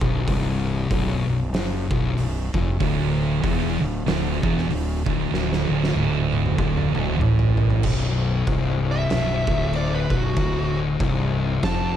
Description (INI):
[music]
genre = stoner and doom metal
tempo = 95 BPM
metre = 4/4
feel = swing 58% on 8ths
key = B minor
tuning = A4 = 440 Hz
[part]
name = thick fuzz guitar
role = riff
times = 0.0-12.0 s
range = B1 to A2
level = -23 LUFS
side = left 4 dB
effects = distortion
[part]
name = fuzz fingered electric bass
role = bass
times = 0.0-12.0 s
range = B0 to A1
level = -28 LUFS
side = right 1 dB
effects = overdrive
[part]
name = oversized low-tuned drum kit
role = drums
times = 0.0-11.8 s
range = crash cymbal, hi-hat, kick drum, snare drum, toms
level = -26 LUFS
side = right 1 dB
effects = none
[part]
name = thick fuzz guitar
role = riff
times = 2.8-7.8 s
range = D2 to A2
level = -25 LUFS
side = right 10 dB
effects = distortion
[part]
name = fuzz lead guitar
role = melody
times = 8.9-12.0 s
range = F#4 to A5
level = -27 LUFS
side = right 3 dB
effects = distortion, slapback echo
[sound]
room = light reverb, studio reverb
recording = dark, warm production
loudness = -20 LUFS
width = side -10 dB against mid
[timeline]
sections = 0.0-7.8 A section; 7.8-12.0 B section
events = drum fill 5.3-7.8; lead electric guitar solo 7.8-12.0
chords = 0.0 B5; 2.8 D5; 7.8 Bm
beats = | 0.28 0.91 1.54 2.17 | 2.80 3.43 4.06 4.69 | 5.32 5.95 6.58 7.21 | 7.85 8.48 9.11 9.74 | 10.38 11.01 11.64